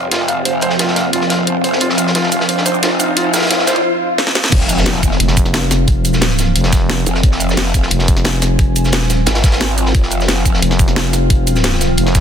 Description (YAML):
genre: dark technical drum and bass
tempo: 177 BPM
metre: 4/4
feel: straight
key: F minor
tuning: A4 = 440 Hz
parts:
  - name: deep dark ambient pad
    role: sustained chords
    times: 0.0-12.2 s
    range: F3 to Ab5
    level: -20 LUFS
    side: equal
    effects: chorus, built-in reverb, sidechain pumping
  - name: felt-muted upright piano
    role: arpeggios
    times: 0.0-3.7 s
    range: F4 to F5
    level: -18 LUFS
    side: right 1 dB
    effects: vintage 12-bit sampler grit, sidechain pumping, dub echo
  - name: growl bass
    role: bass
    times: 0.0-10.6 s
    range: F1 to Ab1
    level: -19 LUFS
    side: equal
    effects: chorus, tube saturation, sidechain pumping, high-pass filter
  - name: riser, swell and impact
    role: sound effects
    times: 0.7-5.9 s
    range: none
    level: -22 LUFS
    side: equal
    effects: none
  - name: crunchy breakbeat drum kit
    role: drums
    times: 0.1-12.2 s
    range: hi-hat, snare drum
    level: -22 LUFS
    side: equal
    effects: high-pass filter on hats, high-pass filter on snare, high-pass filter on room
  - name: drum and bass drum kit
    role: drums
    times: 0.1-12.2 s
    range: crash cymbal, hi-hat, shaker, snare drum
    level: -18 LUFS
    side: equal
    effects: none
  - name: electronic kick drum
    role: drums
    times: 4.5-12.2 s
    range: none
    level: -13 LUFS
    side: equal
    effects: none
  - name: growling FM bass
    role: bass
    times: 5.2-12.2 s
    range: F1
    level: -16 LUFS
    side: equal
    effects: none
room: light reverb, small room ambience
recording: dense, heavily limited modern master, high-pass filter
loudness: -12 LUFS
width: side -8 dB against mid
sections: 0.0-4.5 A section; 4.5-12.2 B section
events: build-up 0.0-4.5; filter sweep on ambient pad 0.0-4.5; riser 0.7-3.8; swell 3.8-4.5; drum fill 4.2-4.5; drop 4.5-12.2; impact 4.5-5.9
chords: 0.0 F5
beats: 0.12 | 0.46 0.79 1.13 1.47 | 1.81 2.15 2.49 2.83 | 3.17 3.51 3.85 4.18 | 4.52 4.86 5.20 5.54 | 5.88 6.22 6.56 6.90 | 7.24 7.57 7.91 8.25 | 8.59 8.93 9.27 9.61 | 9.95 10.29 10.62 10.96 | 11.30 11.64 11.98